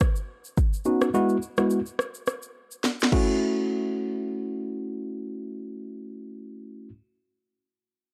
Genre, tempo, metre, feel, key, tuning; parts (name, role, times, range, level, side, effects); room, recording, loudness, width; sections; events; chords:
afrobeats; 106 BPM; 4/4; swing 55% on 16ths; F# minor; A4 = 436 Hz
afro-pop drum kit; drums; 0.0-3.3 s; crash cymbal, kick drum, rim click, shaker, snare drum; -27 LUFS; equal
tine electric piano; accompaniment; 0.9-6.9 s; G#3 to F#4; -28 LUFS; equal
digital ambience; dry, gritty hardware recording, cassette tape; -27 LUFS; mono
0.0-3.4 A section; 3.4-5.7 B section
drum fill 2.8-3.4
0.0 Badd9; 1.1 Eadd9; 3.1 F#m7